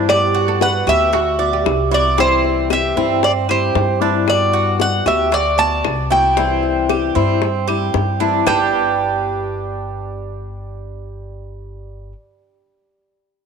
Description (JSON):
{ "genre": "latin, Cuban son and guajira", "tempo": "114 BPM", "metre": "4/4", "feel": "straight", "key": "G major", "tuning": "A4 = 440 Hz", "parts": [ { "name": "flamenco guitar", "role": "accompaniment", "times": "0.0-12.2 s", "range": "C3 to F#4", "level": "-22 LUFS", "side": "left 13 dB", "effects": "none" }, { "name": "Cuban tres", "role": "arpeggios", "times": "0.0-12.1 s", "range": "G3 to D5", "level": "-22 LUFS", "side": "right 11 dB", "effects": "none" }, { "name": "upright bass", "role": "bass", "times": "0.0-12.1 s", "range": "G1 to G2", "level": "-23 LUFS", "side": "equal", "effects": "none" }, { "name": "Cuban tres", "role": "melody", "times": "0.1-12.1 s", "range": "C5 to A5", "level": "-17 LUFS", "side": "right 1 dB", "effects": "none" }, { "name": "oud", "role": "second line", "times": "0.1-2.5, 8.5-12.1 s", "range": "F#4 to B4", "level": "-24 LUFS", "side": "right 11 dB", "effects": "none" }, { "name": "bongos", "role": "percussion", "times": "0.1-8.6 s", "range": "none", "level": "-24 LUFS", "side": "left 15 dB", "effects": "none" }, { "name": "claves", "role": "percussion", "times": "0.1-8.6 s", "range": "none", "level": "-30 LUFS", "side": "left 13 dB", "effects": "none" } ], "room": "moderate plate reverb, RT60 3.0 s", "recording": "1960s-style stereo with parts hard left and right", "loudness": "-14 LUFS", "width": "side -6 dB against mid", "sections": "0.1-8.5 A section; 8.5-12.7 B section", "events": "none", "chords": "0.1 Gmaj7; 2.2 C; 4.3 Gmaj7; 6.4 C; 8.5 G" }